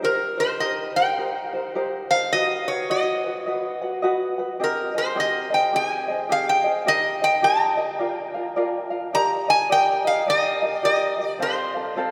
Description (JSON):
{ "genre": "Hawaiian", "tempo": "106 BPM", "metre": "4/4", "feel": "swing 62% on 8ths", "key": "Eb major", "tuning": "A4 = 441 Hz", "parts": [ { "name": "metal-body resonator slide guitar", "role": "melody", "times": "0.0-12.1 s", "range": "Bb4 to Bb5", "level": "-24 LUFS", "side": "equal", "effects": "none" }, { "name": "tenor ukulele", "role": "accompaniment", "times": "0.0-12.1 s", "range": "C4 to F#5", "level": "-27 LUFS", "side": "equal", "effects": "none" } ], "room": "wet cathedral reverb, RT60 5.2 s", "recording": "recorded in a church or concert hall", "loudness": "-22 LUFS", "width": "mono", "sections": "0.0-12.1 A section", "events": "none", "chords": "0.0 Eb6; 2.3 B; 4.6 Abmaj7; 6.9 Eb; 8.0 Bb; 9.1 Ebmaj7; 11.4 F" }